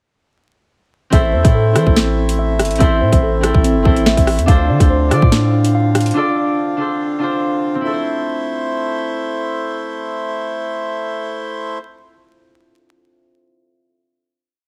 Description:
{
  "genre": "hip hop, drill",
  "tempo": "143 BPM",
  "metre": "4/4",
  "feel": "half-time",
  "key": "A minor",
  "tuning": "A4 = 440 Hz",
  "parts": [
    { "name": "concert harp", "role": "accompaniment", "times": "1.1-11.9 s", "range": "C4 to D5", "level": "-23 LUFS", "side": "equal", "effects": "low-pass filter" },
    { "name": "accordion", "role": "sustained chords", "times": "1.1-11.8 s", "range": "D3 to C5", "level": "-26 LUFS", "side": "equal", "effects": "none" },
    { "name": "mellow tine electric piano", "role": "arpeggios", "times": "1.1-7.0 s", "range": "C4 to F5", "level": "-21 LUFS", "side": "equal", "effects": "low-pass filter, delay" },
    { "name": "long sustained 808-style bass", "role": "bass", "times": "1.1-6.1 s", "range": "G1 to E3", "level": "-19 LUFS", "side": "equal", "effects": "none" },
    { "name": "drill drum kit", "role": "drums", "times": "1.1-6.2 s", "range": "hi-hat, kick drum, rim click, snare drum", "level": "-16 LUFS", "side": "equal", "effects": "none" }
  ],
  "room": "light reverb, digital ambience",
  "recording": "vinyl crackle",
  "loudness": "-16 LUFS",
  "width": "mono",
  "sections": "1.1-7.8 hook; 7.8-11.2 final chord",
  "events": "none",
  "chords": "1.1 Am; 4.5 Dm7; 7.8 Am",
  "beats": "| 1.13 1.54 1.97 2.38 | 2.80 3.22 3.64 4.06 | 4.48 4.90 5.32 5.74 | 6.16 6.58 7.00 7.42 | 7.84 8.26 8.68 9.10 | 9.52 9.94 10.36 10.78"
}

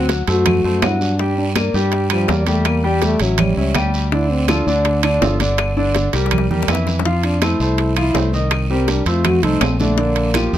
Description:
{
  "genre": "Afro-Cuban jazz",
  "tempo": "164 BPM",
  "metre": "4/4",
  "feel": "straight",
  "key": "D minor",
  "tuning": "A4 = 437 Hz",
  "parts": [
    { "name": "mellow French horn", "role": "melody", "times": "0.0-10.6 s", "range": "F3 to F#4", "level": "-20 LUFS", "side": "left 1 dB", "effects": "none" },
    { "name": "warm grand piano", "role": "accompaniment", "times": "0.0-10.6 s", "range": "D3 to G5", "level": "-20 LUFS", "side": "equal", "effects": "none" },
    { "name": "fingered electric bass", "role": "bass", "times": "0.0-10.6 s", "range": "G1 to G2", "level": "-19 LUFS", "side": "equal", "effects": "none" },
    { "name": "bongos", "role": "percussion", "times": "0.1-10.5 s", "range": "none", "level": "-24 LUFS", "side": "left 8 dB", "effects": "none" },
    { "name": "congas", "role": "percussion", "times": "0.1-10.6 s", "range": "none", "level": "-24 LUFS", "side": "right 1 dB", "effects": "none" },
    { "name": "guiro", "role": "percussion", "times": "0.1-10.6 s", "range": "none", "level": "-31 LUFS", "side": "right 4 dB", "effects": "none" },
    { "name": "timbales", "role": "percussion", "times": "0.1-10.5 s", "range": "none", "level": "-23 LUFS", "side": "right 9 dB", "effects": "none" },
    { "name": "claves", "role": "percussion", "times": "0.5-10.5 s", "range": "none", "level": "-30 LUFS", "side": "left 4 dB", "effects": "none" }
  ],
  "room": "little or no reverb",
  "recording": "close, detailed microphones",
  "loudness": "-14 LUFS",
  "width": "side -12 dB against mid",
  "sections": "0.0-7.1 A section; 7.1-10.6 A section",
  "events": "French horn solo 0.0-10.6; drum fill 6.1-7.1",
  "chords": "0.0 D7; 1.2 Gm; 2.7 A13b9; 3.4 A7; 4.1 Dmadd11; 5.6 Gm; 6.3 C7; 7.1 Fmaj7; 8.5 Cm7; 9.2 F; 10.0 Bb6",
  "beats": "0.09 0.46 0.82 | 1.19 1.56 1.92 2.29 | 2.66 3.02 3.39 3.75 | 4.12 4.49 4.85 5.22 | 5.59 5.95 6.32 6.68 | 7.05 7.42 7.78 8.15 | 8.52 8.88 9.25 9.62 | 9.98 10.35"
}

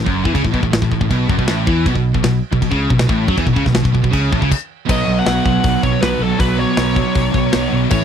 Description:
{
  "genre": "heavy metal",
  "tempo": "158 BPM",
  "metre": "4/4",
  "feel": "straight",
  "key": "unclear",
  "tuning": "A4 = 440 Hz",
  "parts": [
    { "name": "crunchy overdriven guitar", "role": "riff", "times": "0.0-8.0 s", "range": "F#2 to B3", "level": "-21 LUFS", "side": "right 1 dB", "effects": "none" },
    { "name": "scooped high-gain guitar", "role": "riff", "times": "0.0-8.0 s", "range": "F#2 to F#3", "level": "-22 LUFS", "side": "left 10 dB", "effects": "distortion" },
    { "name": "scooped high-gain guitar", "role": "riff", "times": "0.0-8.0 s", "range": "F#2 to B3", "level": "-21 LUFS", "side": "right 10 dB", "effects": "distortion" },
    { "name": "picked electric bass", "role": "bass", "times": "0.0-8.0 s", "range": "F#1 to F#2", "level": "-20 LUFS", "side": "equal", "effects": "none" },
    { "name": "tight metal drum kit", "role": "drums", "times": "0.1-8.0 s", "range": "crash cymbal, hi-hat, kick drum, snare drum", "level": "-19 LUFS", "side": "left 1 dB", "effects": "none" },
    { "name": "high-gain lead guitar", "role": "melody", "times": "4.9-8.0 s", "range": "A4 to F#5", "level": "-21 LUFS", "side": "equal", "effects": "distortion, slapback echo" }
  ],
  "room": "little or no reverb",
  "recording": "dry, close 1970s-style studio recording",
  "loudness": "-13 LUFS",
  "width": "side -8 dB against mid",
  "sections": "0.0-4.9 A section; 4.9-8.0 B section",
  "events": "stop 4.5-4.9",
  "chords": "0.0 A5; 1.9 B5",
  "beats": "| 0.34 0.72 1.09 1.48 | 1.85 2.23 2.61 2.99 | 3.37 3.75 4.13 4.51 | 4.89 5.27 5.64 6.02 | 6.40 6.78 7.16 7.54 | 7.92"
}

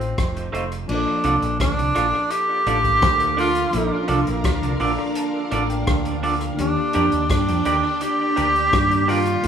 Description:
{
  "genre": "lovers rock reggae",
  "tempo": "84 BPM",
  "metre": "4/4",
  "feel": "straight",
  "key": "unclear",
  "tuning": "A4 = 442 Hz",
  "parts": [
    { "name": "breathy tenor saxophone", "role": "melody", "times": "0.0-9.5 s", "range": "C4 to G4", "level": "-21 LUFS", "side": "equal", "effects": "tape echo" },
    { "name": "FM electric piano", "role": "accompaniment", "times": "0.0-9.5 s", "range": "D3 to C6", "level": "-29 LUFS", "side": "left 3 dB", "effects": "chorus" },
    { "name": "deep dub fingered electric bass", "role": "bass", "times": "0.0-9.5 s", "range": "F1 to G2", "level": "-25 LUFS", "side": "equal", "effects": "none" },
    { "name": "vintage drum kit", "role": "drums", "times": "0.0-9.5 s", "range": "crash cymbal, hi-hat, kick drum, rim click", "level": "-26 LUFS", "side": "equal", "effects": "tape echo" },
    { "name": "electric guitar through a small old amp", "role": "stabs", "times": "0.5-9.2 s", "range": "A3 to D5", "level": "-27 LUFS", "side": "right 6 dB", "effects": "tape echo" },
    { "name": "string machine, full ensemble", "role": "second line", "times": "2.8-9.5 s", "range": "D4 to G5", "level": "-26 LUFS", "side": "right 1 dB", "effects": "ensemble chorus" }
  ],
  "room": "light reverb, small room reverb",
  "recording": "rough home demo mix, studio ambience",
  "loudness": "-18 LUFS",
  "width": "side -8 dB against mid",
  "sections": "0.9-9.5 A section",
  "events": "FM electric piano fill 4.4-6.6",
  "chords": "0.0 F7; 0.9 Bbmaj7; 6.6 Ebmaj7",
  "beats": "0.17 | 0.89 1.60 2.31 3.02 | 3.74 4.45 5.16 5.87 | 6.59 7.30 8.01 8.72 | 9.44"
}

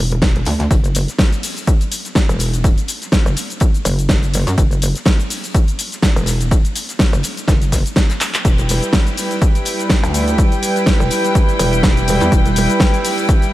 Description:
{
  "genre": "bass house",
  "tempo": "124 BPM",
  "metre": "4/4",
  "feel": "swing 56% on 16ths",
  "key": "E minor",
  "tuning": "A4 = 440 Hz",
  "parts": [
    { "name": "metallic wobble bass", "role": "bass", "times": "0.0-12.7 s", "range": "E1 to F#2", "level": "-17 LUFS", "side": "equal", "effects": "chorus, sidechain pumping" },
    { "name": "big-room dance drum kit", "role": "drums", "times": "0.1-13.5 s", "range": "cabasa, handclaps, hi-hat, snare drum", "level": "-20 LUFS", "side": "equal", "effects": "none" },
    { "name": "damped 70s drum kit", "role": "drums", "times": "0.2-13.5 s", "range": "hi-hat, snare drum", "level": "-34 LUFS", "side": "left 4 dB", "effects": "none" },
    { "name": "electronic kick drum", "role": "drums", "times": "0.2-13.4 s", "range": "none", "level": "-14 LUFS", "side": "equal", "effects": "none" },
    { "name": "warm studio string section", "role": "sustained chords", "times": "8.4-13.5 s", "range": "G3 to G5", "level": "-18 LUFS", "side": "equal", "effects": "vintage 12-bit sampler grit, sidechain pumping" }
  ],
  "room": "light reverb, studio ambience",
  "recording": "none",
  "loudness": "-13 LUFS",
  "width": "side -16 dB against mid",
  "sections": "0.0-13.5 A section",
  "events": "drum fill 8.2",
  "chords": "0.0 Dsus2/E; 0.7 Esus2; 8.4 Em",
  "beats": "0.22 | 0.71 1.19 1.68 2.16 | 2.64 3.13 3.61 4.09 | 4.58 5.06 5.55 6.03 | 6.51 7.00 7.48 7.96 | 8.45 8.93 9.42 9.90 | 10.38 10.87 11.35 11.84 | 12.32 12.80 13.29"
}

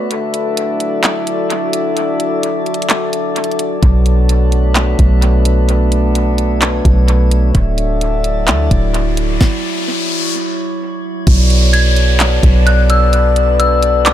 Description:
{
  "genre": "hip hop, atmospheric cloud-rap",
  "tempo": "129 BPM",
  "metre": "4/4",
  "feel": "half-time",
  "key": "B minor",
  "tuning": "A4 = 440 Hz",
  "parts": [
    { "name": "warm French horn section", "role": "sustained chords", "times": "0.0-14.1 s", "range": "D3 to E5", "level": "-18 LUFS", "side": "left 3 dB", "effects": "sidechain pumping" },
    { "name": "drifting glass-harmonics texture", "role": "texture", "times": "0.0-14.1 s", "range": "F#3 to A5", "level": "-21 LUFS", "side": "right 1 dB", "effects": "chorus, built-in reverb" },
    { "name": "smooth R&B drum kit", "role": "drums", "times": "0.1-14.1 s", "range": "handclaps, hi-hat, kick drum, snare drum", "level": "-15 LUFS", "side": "equal", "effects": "dub echo" },
    { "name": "soft 808-style bass", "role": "bass", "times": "3.8-14.1 s", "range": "D1 to D2", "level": "-12 LUFS", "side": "equal", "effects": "none" },
    { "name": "riser and downlifter", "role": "sound effects", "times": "8.4-14.1 s", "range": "none", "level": "-22 LUFS", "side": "left 2 dB", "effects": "none" },
    { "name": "dark detuned synth bell", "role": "melody", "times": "11.7-14.1 s", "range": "D6 to G#6", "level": "-17 LUFS", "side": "equal", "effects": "chorus, dub echo" }
  ],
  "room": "digital ambience",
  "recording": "echo-heavy mix",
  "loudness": "-11 LUFS",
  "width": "side -11 dB against mid",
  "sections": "0.0-11.3 A section; 11.3-14.1 B section",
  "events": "break 0.0-3.8; kick muted 2.9-3.8; riser 8.4-11.3; stop 9.4-11.3",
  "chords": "0.1 Dadd9; 3.8 Bm7; 7.5 Dadd9; 11.3 Bm7",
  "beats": "| 0.11 0.57 1.04 1.50 | 1.97 2.43 2.90 3.36 | 3.83 4.29 4.76 5.22 | 5.69 6.15 6.62 7.08 | 7.55 8.01 8.48 8.94 | 9.41 9.87 10.34 10.80 | 11.27 11.73 12.20 12.66 | 13.13 13.59 14.06"
}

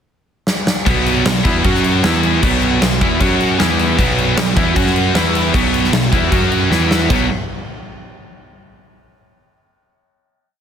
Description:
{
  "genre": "hard rock",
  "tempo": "154 BPM",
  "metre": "4/4",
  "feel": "straight",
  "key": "B minor",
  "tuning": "A4 = 441 Hz",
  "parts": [
    { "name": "huge arena drum kit", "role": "drums", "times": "0.5-7.2 s", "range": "crash cymbal, kick drum, snare drum", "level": "-17 LUFS", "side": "left 1 dB", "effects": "none" },
    { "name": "tonewheel organ", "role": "sustained chords", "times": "0.9-7.3 s", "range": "B3 to B5", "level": "-29 LUFS", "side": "equal", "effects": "none" },
    { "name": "high-gain distorted guitar", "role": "riff", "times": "0.9-7.3 s", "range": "B2 to F#4", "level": "-20 LUFS", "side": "left 10 dB", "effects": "distortion" },
    { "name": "sludgy distorted guitar", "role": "riff", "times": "0.9-7.3 s", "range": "B2 to F#4", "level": "-20 LUFS", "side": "right 10 dB", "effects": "overdrive" },
    { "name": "tight distorted guitar", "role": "riff", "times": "0.9-7.3 s", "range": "B2 to F#4", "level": "-21 LUFS", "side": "equal", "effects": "distortion" },
    { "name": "fuzz picked electric bass", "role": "bass", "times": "0.9-7.3 s", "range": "B1 to F#2", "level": "-20 LUFS", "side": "equal", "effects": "overdrive" }
  ],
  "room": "light reverb, small room ambience",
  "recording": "none",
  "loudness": "-12 LUFS",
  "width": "side -8 dB against mid",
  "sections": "0.0-0.9 pickup bar; 0.9-7.1 riff; 7.1-8.7 final chord",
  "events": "drum fill 0.5-0.9, 6.7-7.1",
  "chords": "0.0 N.C.; 0.9 Bm; 1.6 F#5; 2.0 E5; 2.4 Bm; 3.2 F#5; 3.6 E5; 4.0 Bm; 4.8 F#5; 5.1 E5; 5.5 Bm; 6.3 F#5; 6.7 E5; 7.1 B5",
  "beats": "0.08 0.47 | 0.86 1.25 1.64 2.03 | 2.42 2.81 3.20 3.59 | 3.98 4.37 4.76 5.15 | 5.54 5.93 6.32 6.71 | 7.10"
}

